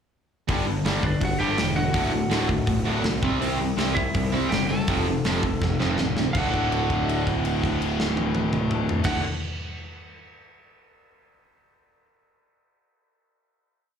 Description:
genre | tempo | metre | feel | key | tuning
punk rock | 164 BPM | 4/4 | straight | D mixolydian | A4 = 442 Hz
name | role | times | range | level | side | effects
overdriven semi-hollow guitar | riff | 0.5-9.2 s | D2 to C4 | -27 LUFS | right 9 dB | slapback echo
tight distorted guitar | riff | 0.5-9.2 s | D2 to C4 | -28 LUFS | left 12 dB | distortion, slapback echo
fuzz picked electric bass | bass | 0.5-9.2 s | D1 to C2 | -28 LUFS | equal | overdrive
big rock drum kit | drums | 0.5-9.1 s | crash cymbal, hi-hat, kick drum, snare drum, toms | -28 LUFS | equal | none
lightly driven lead guitar | melody | 1.0-9.2 s | D4 to A5 | -30 LUFS | right 2 dB | slapback echo, tape echo
room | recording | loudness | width
light reverb | live gig heard through the venue's PA, club reverb | -22 LUFS | side -7 dB against mid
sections
0.5-6.3 verse; 6.3-9.3 final chord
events
drum fill 5.6-6.3; held note 6.3-9.1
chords
0.5 G5; 1.9 D; 3.2 C; 4.9 F; 6.3 D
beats
| 0.48 0.85 1.21 1.58 | 1.94 2.31 2.67 3.04 | 3.41 3.78 4.14 4.51 | 4.88 5.25 5.61 5.98 | 6.35 6.71 7.08 7.45 | 7.81 8.18 8.54 8.91

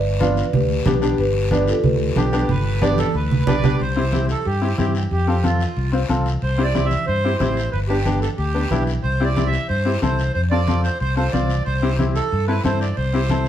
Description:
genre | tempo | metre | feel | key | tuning
latin, cumbia | 183 BPM | 4/4 | straight | C major | A4 = 441 Hz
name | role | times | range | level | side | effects
marimba with soft mallets | melody | 0.0-3.4 s | D4 to D5 | -22 LUFS | equal | plate reverb
fingered electric bass | bass | 0.0-13.5 s | G1 to G2 | -21 LUFS | equal | none
bright upright piano | accompaniment | 0.2-13.5 s | B3 to C5 | -23 LUFS | left 3 dB | none
congas | percussion | 0.2-13.5 s | none | -25 LUFS | right 3 dB | none
guiro | percussion | 0.2-13.5 s | none | -36 LUFS | left 4 dB | none
accordion | second line | 2.2-13.5 s | F4 to E5 | -24 LUFS | right 3 dB | none
room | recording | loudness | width
wet studio reverb, RT60 0.9 s | heard from further back in the room | -17 LUFS | side -10 dB against mid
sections
0.0-3.8 A section; 3.8-13.5 B section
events
drum fill 2.8-3.8; accordion solo 3.8-13.5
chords
0.0 G; 3.8 C; 5.1 F; 6.4 C; 7.7 G; 9.0 C; 10.3 F; 11.7 C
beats
0.21 0.54 0.86 | 1.19 1.51 1.84 2.17 | 2.49 2.82 3.15 3.47 | 3.80 4.13 4.45 4.78 | 5.11 5.44 5.76 6.09 | 6.42 6.75 7.08 7.40 | 7.73 8.06 8.38 8.71 | 9.04 9.37 9.70 10.02 | 10.35 10.68 11.00 11.33 | 11.66 11.99 12.31 12.64 | 12.97 13.30

